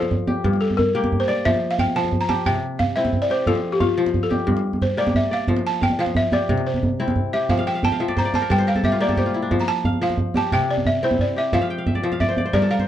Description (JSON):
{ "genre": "west african traditional, West African string and xylophone music", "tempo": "119 BPM (dotted quarters)", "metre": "12/8", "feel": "straight", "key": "F major", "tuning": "A4 = 440 Hz", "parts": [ { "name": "balafon", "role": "melody", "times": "0.0-12.9 s", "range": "F4 to Bb5", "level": "-22 LUFS", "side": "equal", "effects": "none" }, { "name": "kora", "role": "arpeggios", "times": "0.0-12.9 s", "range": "G2 to G5", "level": "-23 LUFS", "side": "left 2 dB", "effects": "none" }, { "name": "djembe", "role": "percussion", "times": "0.0-12.9 s", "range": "none", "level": "-23 LUFS", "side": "right 2 dB", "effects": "none" } ], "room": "moderate studio reverb, RT60 0.5 s", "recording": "dark, warm production", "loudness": "-18 LUFS", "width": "side -11 dB against mid", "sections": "0.0-12.9 A section", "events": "balafon solo 0.0-12.9; kora fill 7.6-9.5, 11.5-12.9", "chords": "0.4 Gm; 1.5 Fmaj13; 2.5 C; 3.5 Fadd9; 4.5 Gm; 5.5 Fsus2; 6.5 C; 7.5 F; 8.5 Gm; 9.5 F; 10.5 C; 11.5 Dm11/F", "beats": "0.45 0.95 | 1.45 1.96 2.46 2.96 | 3.47 3.97 4.47 4.98 | 5.48 5.99 6.49 7.00 | 7.50 8.01 8.51 9.01 | 9.52 10.02 10.53 11.03 | 11.53 12.04 12.54" }